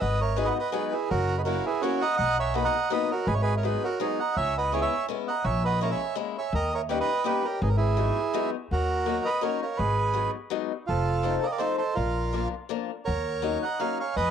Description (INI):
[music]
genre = musette waltz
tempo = 166 BPM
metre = 3/4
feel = swing 55% on 8ths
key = G# minor, Eb minor from 8.7 s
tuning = A4 = 440 Hz
[part]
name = bandoneon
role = melody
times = 0.0-14.3 s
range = C#4 to F#5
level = -27 LUFS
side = right 3 dB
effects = none
[part]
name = celesta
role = second line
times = 0.0-14.3 s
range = A#4 to A#5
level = -34 LUFS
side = right 10 dB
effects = none
[part]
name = upright bass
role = bass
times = 0.0-14.3 s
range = F1 to F2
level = -28 LUFS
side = left 1 dB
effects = none
[part]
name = picked old ladder-braced acoustic guitar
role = accompaniment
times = 0.4-14.0 s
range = F3 to F4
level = -31 LUFS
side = left 13 dB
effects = none
[sound]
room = moderate spring reverb, RT60 1.7 s, small room ambience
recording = 1960s-style stereo with parts hard left and right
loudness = -24 LUFS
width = side -8 dB against mid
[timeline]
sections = 0.0-8.7 A section; 8.7-14.3 B section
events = none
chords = 0.0 G#m7; 1.1 F#7; 2.2 Bmaj7; 3.3 G#m7; 4.4 C#m7; 5.4 A#m7b5; 6.5 D#7; 7.6 G#m7; 8.7 Ebm7; 9.8 Abm7; 10.9 F7; 12.0 Bb; 13.1 Ebm7